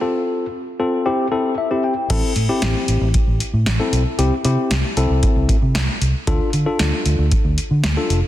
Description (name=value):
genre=synth-pop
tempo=115 BPM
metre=4/4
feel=straight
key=unclear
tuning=A4 = 441 Hz
part: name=tine electric piano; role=accompaniment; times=0.0-8.2 s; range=C4 to G5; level=-21 LUFS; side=left 2 dB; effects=none
part: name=vintage muted fingered electric bass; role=bass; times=2.1-8.2 s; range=F1 to D3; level=-18 LUFS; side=equal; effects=none
part: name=electro analog drum machine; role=drums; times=2.1-8.2 s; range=crash cymbal, hi-hat, kick drum, snare drum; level=-20 LUFS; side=equal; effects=none
room=light reverb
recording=dense, heavily limited modern master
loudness=-16 LUFS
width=side -13 dB against mid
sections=0.0-2.1 A section; 2.1-8.3 B section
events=break 0.0-2.1; tine electric piano fill 1.3-2.1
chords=0.0 F; 1.1 C; 2.1 Am; 4.2 C; 6.3 Dm